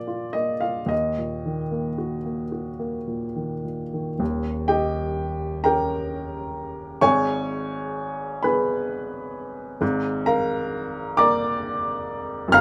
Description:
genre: classical, romantic nocturne for solo piano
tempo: 34-46 BPM (dotted quarters)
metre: 6/8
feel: rubato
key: unclear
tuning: A4 = 440 Hz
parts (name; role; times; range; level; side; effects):
- warm upright piano; solo; 0.0-12.6 s; Eb1 to F6; -25 LUFS; equal; none
room: light reverb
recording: none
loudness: -25 LUFS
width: mono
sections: 0.0-4.2 A section; 4.2-12.6 B section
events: none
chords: 0.0 Bb; 0.9 Ebm; 4.2 Eb7; 7.0 Abm; 9.8 Bb7/Ab

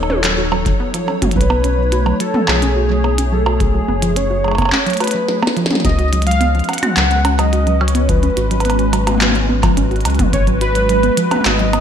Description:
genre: IDM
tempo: 107 BPM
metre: 4/4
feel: straight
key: unclear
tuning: A4 = 440 Hz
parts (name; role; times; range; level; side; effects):
- hollow soft pad; sustained chords; 0.0-11.8 s; F#3 to C#5; -22 LUFS; equal; ensemble chorus, sidechain pumping
- warbly dusty pluck; arpeggios; 0.0-11.8 s; E#3 to F#4; -22 LUFS; right 2 dB; chorus, digital delay
- round analog bass; bass; 0.0-11.8 s; D#1 to C#2; -18 LUFS; left 1 dB; tube saturation
- glitchy drum kit; drums; 0.0-11.8 s; handclaps, hi-hat, percussion blips, snare drum, toms; -19 LUFS; right 1 dB; studio reverb, gated reverb
- electronic kick drum; drums; 0.7-10.4 s; none; -19 LUFS; left 1 dB; studio reverb
- warm velvety synth lead; melody; 1.4-11.8 s; G#4 to F#5; -20 LUFS; equal; chorus, digital delay
room: moderate lush hall reverb, RT60 1.8 s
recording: bright 1980s-style digital production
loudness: -13 LUFS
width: side -8 dB against mid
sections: 0.0-5.8 A section; 5.8-11.8 B section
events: drum fill 5.3-5.8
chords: 0.0 F#m6; 1.4 B13; 5.8 G#m7

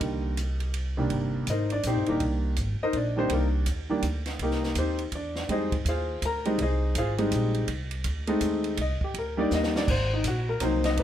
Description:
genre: jazz piano trio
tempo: 164 BPM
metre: 3/4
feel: swing 64% on 8ths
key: C minor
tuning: A4 = 439 Hz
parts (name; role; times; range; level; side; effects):
- clear concert grand piano; melody; 0.0-11.0 s; C2 to Bb5; -27 LUFS; left 1 dB; none
- upright bass; bass; 0.0-11.0 s; Eb1 to F2; -29 LUFS; equal; none
- compact cocktail drum kit; drums; 0.0-11.0 s; crash cymbal, hi-hat, kick drum, ride cymbal, snare drum; -34 LUFS; right 2 dB; none
room: light reverb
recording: none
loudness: -25 LUFS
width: side -11 dB against mid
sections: 0.0-1.1 A section; 1.1-11.0 B section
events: grand piano solo 1.1-11.0; drum fill 9.5-9.9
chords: 0.0 Cm7; 5.5 Fm7; 7.7 Cm69; 9.9 Ab7

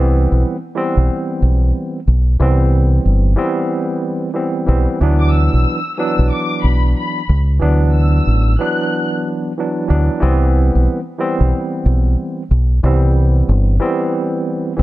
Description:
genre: hip hop, boom-bap hip-hop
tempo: 92 BPM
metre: 4/4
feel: swing 62% on 16ths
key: unclear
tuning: A4 = 440 Hz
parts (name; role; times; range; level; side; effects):
- barky tine electric piano; accompaniment; 0.0-14.8 s; E3 to D4; -19 LUFS; right 1 dB; medium stereo tremolo, cassette tape, high-pass filter, low-pass filter
- deep dub fingered electric bass; bass; 0.0-14.8 s; G1 to D2; -12 LUFS; equal; none
- warm studio violin section; melody; 5.2-9.1 s; B5 to F#6; -23 LUFS; left 3 dB; high-pass filter, low-pass filter, slapback echo
room: studio reverb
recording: dark, warm production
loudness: -13 LUFS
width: side -17 dB against mid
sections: 0.0-14.8 A section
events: none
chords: 0.0 Cmaj7; 5.0 D69; 10.2 Cmaj7

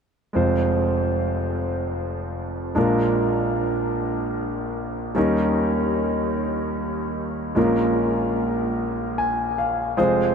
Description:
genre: folk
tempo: 50 BPM (dotted quarters)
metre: 6/8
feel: straight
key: unclear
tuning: A4 = 440 Hz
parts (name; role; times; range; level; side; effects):
- clear grand piano; melody; 0.3-10.3 s; F1 to Ab5; -20 LUFS; equal; none
room: wet huge ambient reverb, RT60 8.5 s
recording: in a vast, echoing space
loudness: -21 LUFS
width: side -6 dB against mid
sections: 0.3-10.0 A section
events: grand piano fill 8.8-10.0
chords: 0.3 Fm; 2.8 Bb7; 5.2 Eb7; 7.6 Bbm7

